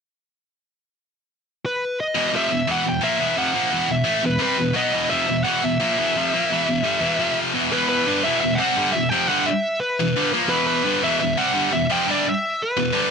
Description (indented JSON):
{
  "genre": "metal",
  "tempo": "172 BPM",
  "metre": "4/4",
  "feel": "straight",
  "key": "E harmonic minor, E minor from 7.7 s",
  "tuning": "A4 = 440 Hz",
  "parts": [
    { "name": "high-gain lead guitar", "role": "melody", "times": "1.7-13.1 s", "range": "B4 to G5", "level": "-22 LUFS", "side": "equal", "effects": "distortion, digital delay" },
    { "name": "heavy high-gain guitar", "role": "riff", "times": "2.1-13.1 s", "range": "E2 to C4", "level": "-20 LUFS", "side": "equal", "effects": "distortion" }
  ],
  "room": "light reverb",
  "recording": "nothing above 10.6 kHz",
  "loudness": "-18 LUFS",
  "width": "side -6 dB against mid",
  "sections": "0.8-2.1 A section; 2.1-7.7 B section; 7.7-13.1 C section",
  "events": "none",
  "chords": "0.8 N.C.; 2.1 E5; 7.2 F5; 7.5 E5; 7.7 Em",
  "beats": "| 0.76 1.10 1.45 1.80 | 2.15 2.50 2.85 3.19 | 3.54 3.89 4.24 4.59 | 4.93 5.28 5.63 5.98 | 6.33 6.68 7.03 7.38 | 7.72 8.07 8.42 8.77 | 9.11 9.46 9.81 10.16 | 10.51 10.85 11.20 11.55 | 11.90 12.25 12.60 12.95"
}